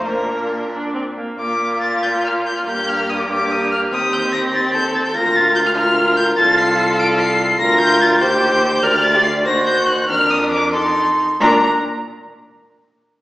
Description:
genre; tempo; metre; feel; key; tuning
quick classical-period movement for string quartet; 96 BPM (dotted quarters); 6/8; rubato; Bb major; A4 = 440 Hz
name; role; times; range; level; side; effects
rich violin; melody; 0.0-11.6 s; D4 to D7; -17 LUFS; left 1 dB; none
rich violin; second line; 0.0-11.7 s; F4 to D5; -21 LUFS; equal; none
rich viola; accompaniment; 0.0-11.7 s; Bb3 to Bb4; -21 LUFS; equal; none
rich cello; bass; 0.0-11.7 s; C2 to Bb2; -24 LUFS; right 1 dB; none
room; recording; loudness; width
wet recital hall reverb, RT60 1.6 s; recorded in a church or concert hall, small speaker sound; -14 LUFS; side -17 dB against mid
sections
0.0-1.4 A section; 1.4-11.4 A section; 11.4-12.7 B section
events
none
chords
0.1 Bb; 2.7 Gm; 3.9 Cm/Eb; 5.1 Bb/D; 6.4 F/C; 7.6 Bb/D; 8.2 Cm/Eb; 8.8 Bb/D (rootless); 9.5 Cdim/Eb; 10.1 Bb/F; 10.7 F7; 11.4 Bb

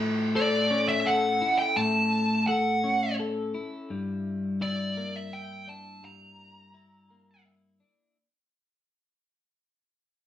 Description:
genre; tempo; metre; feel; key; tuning
rock; 84 BPM; 3/4; straight; unclear; A4 = 439 Hz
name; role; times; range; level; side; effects
twelve-string electric guitar; arpeggios; 0.0-8.2 s; G2 to A4; -28 LUFS; left 2 dB; none
fuzz lead guitar; melody; 0.4-7.4 s; D5 to Bb5; -26 LUFS; equal; distortion
room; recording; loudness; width
wet studio reverb, RT60 0.6 s; band playing live in one room; -24 LUFS; side -11 dB against mid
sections
0.0-8.2 A section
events
fade-out 0.0-8.2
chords
0.0 A; 3.9 Gm6

